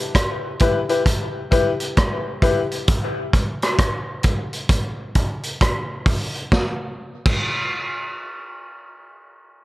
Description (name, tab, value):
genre	dub reggae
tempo	66 BPM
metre	4/4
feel	swing 63% on 16ths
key	E minor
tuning	A4 = 440 Hz
part	vintage drum kit	drums	0.1-7.5 s	crash cymbal, hi-hat, kick drum, rim click, snare drum	-20 LUFS	equal	none
part	clear upright piano	stabs	0.6-2.6 s	E4 to B4	-23 LUFS	left 4 dB	dub echo
room	light reverb, small room ambience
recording	echo-heavy mix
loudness	-19 LUFS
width	side -17 dB against mid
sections	0.0-6.5 A section; 6.5-9.6 B section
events	none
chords	0.0 Em; 2.9 N.C.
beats	0.15 1.06 1.97 | 2.88 3.79 4.70 5.61 | 6.52 7.42